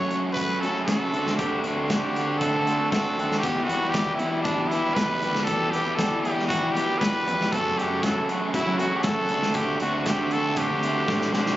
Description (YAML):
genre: indie rock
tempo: 118 BPM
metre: 4/4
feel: straight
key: E minor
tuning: A4 = 438 Hz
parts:
  - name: growling trumpet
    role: melody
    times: 0.0-11.6 s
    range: D4 to C#5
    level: -26 LUFS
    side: equal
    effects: none
  - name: crunchy overdriven guitar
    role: riff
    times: 0.0-11.6 s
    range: E2 to G4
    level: -26 LUFS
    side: equal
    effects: none
  - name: growling fingered electric bass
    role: bass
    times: 0.0-11.6 s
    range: A1 to F#3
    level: -31 LUFS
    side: equal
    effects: overdrive
  - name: loose indie drum kit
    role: drums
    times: 0.1-11.6 s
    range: hi-hat, kick drum, snare drum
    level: -30 LUFS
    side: equal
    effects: none
room: light reverb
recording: recorded on a phone in the room, club reverb, compression, nothing above 7.6 kHz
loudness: -22 LUFS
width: side -14 dB against mid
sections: 0.0-11.6 A section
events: drum fill 11.1-11.6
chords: 0.0 F#m; 1.1 D7sus4; 3.4 Em; 7.5 F#m; 9.3 D7sus4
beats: 0.37 0.89 | 1.40 1.91 2.42 2.93 | 3.44 3.95 4.46 4.97 | 5.48 5.99 6.50 7.01 | 7.52 8.03 8.54 9.05 | 9.56 10.07 10.58 11.09